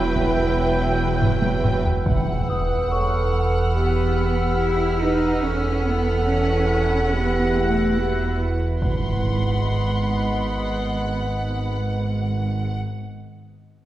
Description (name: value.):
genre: cinematic, suspense film score.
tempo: 71 BPM.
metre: 4/4.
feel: straight.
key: unclear.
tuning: A4 = 442 Hz.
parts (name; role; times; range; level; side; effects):
dark studio violin section; melody; 0.0-12.7 s; F#5 to G5; -31 LUFS; equal; none.
warm studio violin section; second line; 0.0-1.8 s; B4; -32 LUFS; equal; none.
rich studio viola section; accompaniment; 0.0-1.8 s; F#3; -30 LUFS; right 4 dB; none.
evolving wavetable pad; sustained chords; 0.0-12.8 s; B3 to G5; -29 LUFS; right 2 dB; chorus, built-in reverb.
warm French horn section; sustained chords; 0.0-12.7 s; E4 to B4; -27 LUFS; left 1 dB; none.
concert harp; riff; 0.0-2.1 s; E2 to E3; -32 LUFS; left 4 dB; none.
rich studio cello section; bass; 0.0-12.7 s; E2 to E4; -27 LUFS; right 2 dB; none.
rich studio double bass section; bass; 0.0-12.7 s; E1 to E2; -26 LUFS; right 2 dB; none.
sub bass with octave; drone; 0.0-12.7 s; E1 to G#1; -28 LUFS; right 1 dB; none.
large celesta; texture; 0.0-8.8 s; B4 to D#6; -32 LUFS; left 1 dB; none.
taiko ensemble; drums; 0.2-2.2 s; none; -24 LUFS; equal; none.
bright trombone section; sustained chords; 0.4-0.7 s; F#3 to B3; -35 LUFS; right 4 dB; none.
impact; sound effects; 2.1-12.8 s; none; -27 LUFS; equal; none.
rich studio violin section; texture; 2.1-11.7 s; B5 to B6; -32 LUFS; left 2 dB; none.
room: wet scoring stage reverb, RT60 1.6 s.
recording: heard from further back in the room.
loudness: -19 LUFS.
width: side -14 dB against mid.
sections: 0.0-2.1 A section; 2.1-8.8 B section; 8.8-12.2 C section.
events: drum fill 1.2-2.1; impact 2.1-5.4, 8.8-12.2.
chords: 0.0 Emadd9; 8.8 G#m7.